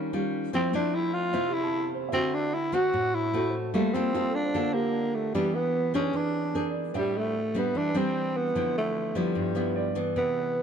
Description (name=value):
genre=bossa nova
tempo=150 BPM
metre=4/4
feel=straight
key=A minor from 6.9 s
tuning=A4 = 441 Hz
part: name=nylon-string guitar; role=accompaniment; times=0.0-10.6 s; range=G2 to A4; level=-28 LUFS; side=left 1 dB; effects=none
part: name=growling tenor saxophone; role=melody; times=0.5-10.6 s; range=G3 to F#4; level=-28 LUFS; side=right 1 dB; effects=none
part: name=warm baby grand piano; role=accompaniment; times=1.3-10.3 s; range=F4 to A5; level=-37 LUFS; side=right 6 dB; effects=none
room=moderate plate reverb, RT60 3.4 s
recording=dark, warm production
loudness=-25 LUFS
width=side -7 dB against mid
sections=0.0-6.9 A section; 6.9-10.6 B section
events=none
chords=0.0 Eb9; 0.5 Fmaj7; 2.1 D7; 3.7 Gm9; 5.3 Em7; 6.1 Eaug7; 6.9 Am7; 8.5 Dm9; 9.4 G6